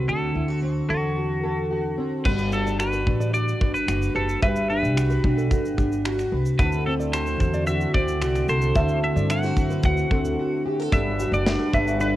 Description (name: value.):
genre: acoustic pop.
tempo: 111 BPM.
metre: 4/4.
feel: straight.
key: G major.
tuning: A4 = 445 Hz.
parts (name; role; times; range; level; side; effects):
twelve-string electric guitar; melody; 0.0-12.2 s; F#4 to F#5; -28 LUFS; equal; cassette tape.
fingerpicked plugged-in steel-string acoustic guitar; accompaniment; 0.0-12.2 s; D3 to B4; -25 LUFS; equal; double-tracked left and right, cassette tape.
upright bass; bass; 0.0-12.2 s; F#1 to G2; -26 LUFS; equal; none.
nylon-string guitar; arpeggios; 2.3-11.9 s; G4 to F#5; -31 LUFS; right 1 dB; cassette tape.
modern studio drum kit; drums; 2.3-12.1 s; crash cymbal, finger snaps, kick drum, shaker, snare drum; -25 LUFS; equal; cassette tape.
tonewheel organ; sustained chords; 6.6-12.2 s; D3 to F#5; -33 LUFS; equal; slow rotary speaker, cassette tape.
room: small room ambience.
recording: home recording on cassette.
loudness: -20 LUFS.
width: side -14 dB against mid.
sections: 0.0-2.3 A section; 2.3-10.9 B section; 10.9-12.2 C section.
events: break 10.4-10.9.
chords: 0.0 D7; 2.3 Gmaj7; 6.6 D7; 10.9 Gmaj7.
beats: | 0.08 0.63 1.17 1.71 | 2.25 2.80 3.34 3.88 | 4.42 4.96 5.51 6.05 | 6.59 7.13 7.67 8.21 | 8.76 9.30 9.84 10.38 | 10.92 11.46 12.01.